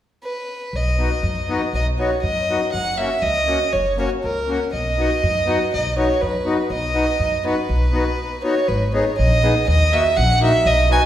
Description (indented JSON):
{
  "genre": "alpine folk, alpine dance band",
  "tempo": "121 BPM",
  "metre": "2/4",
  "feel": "straight",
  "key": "B major",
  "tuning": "A4 = 440 Hz",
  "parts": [
    { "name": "dark fiddle", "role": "melody", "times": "0.2-11.0 s", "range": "A#4 to G#5", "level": "-20 LUFS", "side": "right 1 dB", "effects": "none" },
    { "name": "upright bass", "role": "bass", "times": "0.7-11.0 s", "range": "F#1 to F#2", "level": "-21 LUFS", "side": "equal", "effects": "none" },
    { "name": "accordion", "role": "accompaniment", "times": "1.0-11.0 s", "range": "A#3 to G#4", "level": "-24 LUFS", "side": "left 3 dB", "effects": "none" }
  ],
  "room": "wet recital hall reverb, RT60 1.6 s",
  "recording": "recorded in a church or concert hall",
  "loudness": "-17 LUFS",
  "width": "side -11 dB against mid",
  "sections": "0.7-8.7 A section; 8.7-11.1 B section",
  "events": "break 8.2-8.7",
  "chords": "0.0 N.C.; 0.7 B; 2.7 F#; 4.7 B; 8.7 G#madd9; 9.7 D#m",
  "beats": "0.25 | 0.75 1.25 | 1.75 2.25 | 2.74 3.23 | 3.73 4.23 | 4.73 5.23 | 5.73 6.22 | 6.71 7.20 | 7.69 8.19 | 8.69 9.19 | 9.68 10.17 | 10.66"
}